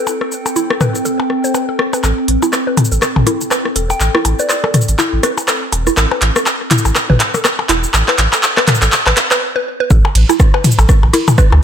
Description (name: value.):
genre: minimal techno.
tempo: 122 BPM.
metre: 4/4.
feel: swing 58% on 16ths.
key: A minor.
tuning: A4 = 441 Hz.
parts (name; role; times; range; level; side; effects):
warbly tape-like pad; texture; 0.0-9.4 s; C4 to G5; -22 LUFS; equal; chorus, built-in reverb, phaser, sidechain pumping.
techno drum kit; drums; 0.1-11.5 s; cabasa, handclaps, hi-hat, ride cymbal, rim click; -16 LUFS; right 1 dB; high-pass filter on perc, high-pass filter on snare, high-pass filter on hats, high-pass filter on cymbals, high-pass filter on room.
minimal click drum kit; percussion; 0.1-11.6 s; percussion blips, rim click, toms; -16 LUFS; left 2 dB; overdrive, ping-pong delay.
mallet-like synth pluck; riff; 0.2-11.4 s; E4 to C5; -20 LUFS; right 1 dB; chorus, sidechain pumping, digital delay.
round analog bass; bass; 2.0-11.6 s; E1 to D2; -14 LUFS; equal; sidechain pumping.
soft synth bell; melody; 3.9-4.6 s; D5 to G5; -22 LUFS; left 2 dB; chorus, phaser, ping-pong delay.
electronic kick drum; drums; 9.9-11.5 s; none; -10 LUFS; equal; none.
room: light reverb.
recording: none.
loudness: -11 LUFS.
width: side -8 dB against mid.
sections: 0.0-2.0 A section; 2.0-9.9 B section; 9.9-11.6 C section.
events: filter sweep on synth arpeggio sound 0.0-2.0, 2.0-9.9; build-up 2.0-9.9; drum fill 2.0-9.4; break 9.4-9.9; drop 9.9-11.6.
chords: 0.0 Am7; 9.9 A5.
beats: | 0.07 0.56 1.05 1.54 | 2.04 2.53 3.02 3.51 | 4.00 4.50 4.99 5.48 | 5.97 6.46 6.96 7.45 | 7.94 8.43 8.92 9.41 | 9.91 10.40 10.89 11.38.